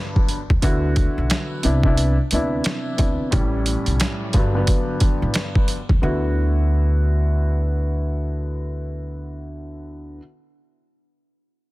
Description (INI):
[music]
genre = hip hop, boom-bap hip-hop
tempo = 89 BPM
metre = 4/4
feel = swing 60% on 16ths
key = D major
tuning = A4 = 440 Hz
[part]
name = dark baby grand piano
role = accompaniment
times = 0.0-10.2 s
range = G2 to F#4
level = -25 LUFS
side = equal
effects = cassette tape, high-pass filter, low-pass filter
[part]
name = boom bap sampler-style drum kit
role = drums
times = 0.2-6.0 s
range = hi-hat, kick drum, snare drum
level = -20 LUFS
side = equal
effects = overdrive
[part]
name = upright bass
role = bass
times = 0.5-10.2 s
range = G1 to Eb2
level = -21 LUFS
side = equal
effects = none
[sound]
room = little or no reverb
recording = dense, heavily limited modern master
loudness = -18 LUFS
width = side -19 dB against mid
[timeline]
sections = 0.0-6.0 A section; 6.0-8.7 B section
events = none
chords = 0.0 Gmaj7; 0.6 D69; 1.6 Cmaj9; 3.3 A7; 4.3 Gmaj7; 6.0 D69